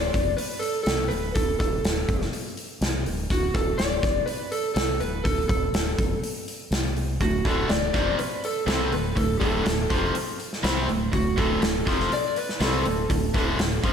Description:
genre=classic rock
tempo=123 BPM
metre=4/4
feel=straight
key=unclear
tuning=A4 = 440 Hz
part: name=electric slide guitar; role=melody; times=0.0-13.9 s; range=F#4 to D5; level=-28 LUFS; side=equal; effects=none
part: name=growling fingered electric bass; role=bass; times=0.0-13.9 s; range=D1 to C2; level=-29 LUFS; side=equal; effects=overdrive
part: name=big rock drum kit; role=drums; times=0.1-13.9 s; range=hi-hat, kick drum, snare drum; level=-26 LUFS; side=equal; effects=none
part: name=overdriven electric guitar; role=riff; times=7.2-13.9 s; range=D2 to C4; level=-29 LUFS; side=right 8 dB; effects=slapback echo
part: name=overdriven semi-hollow guitar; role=riff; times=7.2-13.9 s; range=D2 to C4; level=-29 LUFS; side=left 7 dB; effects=none
room=moderate scoring stage reverb, RT60 1.7 s, small room ambience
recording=big arena sound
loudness=-22 LUFS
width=side -7 dB against mid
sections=0.0-13.9 A section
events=none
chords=0.0 D5; 6.7 N.C.; 7.2 D5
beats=0.38 0.87 | 1.35 1.84 2.33 2.81 | 3.30 3.79 4.28 4.76 | 5.25 5.74 6.23 6.72 | 7.21 7.70 8.19 8.68 | 9.17 9.66 10.15 10.64 | 11.13 11.62 12.11 12.60 | 13.10 13.59

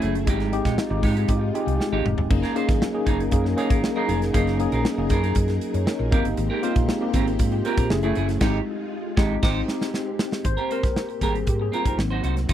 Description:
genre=polished 1980s jazz-funk pop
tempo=118 BPM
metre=4/4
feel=straight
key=Ab major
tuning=A4 = 441 Hz
part: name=tine electric piano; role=accompaniment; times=0.0-12.5 s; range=Eb3 to Ab5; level=-25 LUFS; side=left 2 dB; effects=medium stereo tremolo, analog chorus
part: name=soft string machine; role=sustained chords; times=0.0-12.5 s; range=Db3 to Bb4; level=-33 LUFS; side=equal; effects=ensemble chorus
part: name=semi-hollow electric guitar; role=riff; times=0.0-12.5 s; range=Ab3 to C5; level=-28 LUFS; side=right 4 dB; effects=wide subtle chorus
part: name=hollow-body short-scale fingered electric bass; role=bass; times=0.0-12.5 s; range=Eb1 to Ab2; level=-25 LUFS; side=equal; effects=none
part: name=modern studio drum kit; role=drums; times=0.0-12.5 s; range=crash cymbal, hi-hat, kick drum, snare drum, toms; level=-24 LUFS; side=equal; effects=none
room=light reverb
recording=dry, close 1970s-style studio recording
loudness=-20 LUFS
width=side -11 dB against mid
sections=0.0-10.5 A section; 10.5-12.5 B section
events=tine electric piano fill 1.3-2.3; drum fill 1.8-2.3, 9.4-10.5; band accent 8.4-10.5; tine electric piano solo 10.5-12.5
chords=0.3 Fm9/Ab; 2.3 Gb69; 6.1 Abmaj9; 7.9 Gbm9; 8.4 Fm9/Ab; 9.4 Abmaj7; 10.5 Abmaj9; 12.0 Ab7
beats=| 0.27 0.78 1.29 1.80 | 2.31 2.81 3.32 3.83 | 4.34 4.85 5.36 5.87 | 6.38 6.89 7.40 7.91 | 8.41 8.92 9.43 9.94 | 10.45 10.96 11.47 11.98 | 12.49

